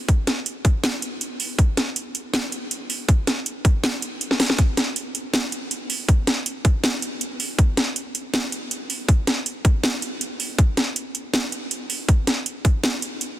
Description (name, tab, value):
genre	future bass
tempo	160 BPM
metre	4/4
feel	half-time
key	none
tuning	none
part	electronic kick drum	drums	0.1-12.7 s	none	-16 LUFS	equal	overdrive
part	trap drum kit	drums	0.1-13.3 s	hi-hat, snare drum	-23 LUFS	equal	overdrive
room	light reverb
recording	dense, heavily limited modern master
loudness	-20 LUFS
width	side -14 dB against mid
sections	0.0-13.4 A section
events	kick drops out 4.2-4.6; drum fill 4.3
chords	none